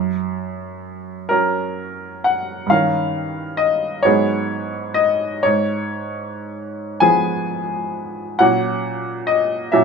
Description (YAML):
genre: classical, romantic nocturne for solo piano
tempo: 36-46 BPM (dotted quarters)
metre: 6/8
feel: rubato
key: F# major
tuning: A4 = 440 Hz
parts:
  - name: bright baby grand piano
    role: solo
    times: 0.0-9.8 s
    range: F#2 to G#5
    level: -18 LUFS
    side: equal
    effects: none
room: moderate large studio reverb, RT60 1.0 s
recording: minimal, uncompressed stereo recording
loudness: -17 LUFS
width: side -5 dB against mid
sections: 0.0-9.8 A section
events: none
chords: 0.0 F#; 2.7 D#7/G; 4.0 G#m7; 5.4 C#7/G#; 8.4 F#/A#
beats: 1.30 | 2.71 4.05 | 5.43 7.01 | 8.40 9.71